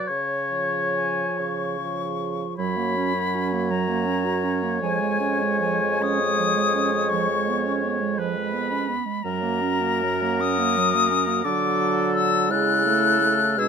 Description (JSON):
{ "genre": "classical, slow romantic movement for wind quintet", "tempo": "45-59 BPM (dotted quarters)", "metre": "6/8", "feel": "rubato", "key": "F# major", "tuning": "A4 = 439 Hz", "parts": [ { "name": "concert flute", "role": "melody", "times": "0.0-13.7 s", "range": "G#5 to F#6", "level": "-25 LUFS", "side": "left 7 dB", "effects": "none" }, { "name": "warm oboe", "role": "second line", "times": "0.0-13.7 s", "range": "G#4 to C#5", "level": "-27 LUFS", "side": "left 3 dB", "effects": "none" }, { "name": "dark clarinet", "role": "accompaniment", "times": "0.0-13.7 s", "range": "E#3 to G#4", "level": "-29 LUFS", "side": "right 12 dB", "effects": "none" }, { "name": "warm French horn", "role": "accompaniment", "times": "0.0-13.7 s", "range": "E#3 to A3", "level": "-29 LUFS", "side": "right 3 dB", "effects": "none" }, { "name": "mellow bassoon", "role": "bass", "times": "0.1-13.7 s", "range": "E#2 to D3", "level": "-29 LUFS", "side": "right 3 dB", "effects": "none" } ], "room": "light reverb", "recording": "close, detailed microphones", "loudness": "-20 LUFS", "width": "side -6 dB against mid", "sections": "0.0-2.6 A section; 2.6-13.7 B section", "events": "none", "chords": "0.1 C#; 2.6 F#; 4.8 C#/E#; 7.1 C#7/E#; 9.2 F#; 11.4 D" }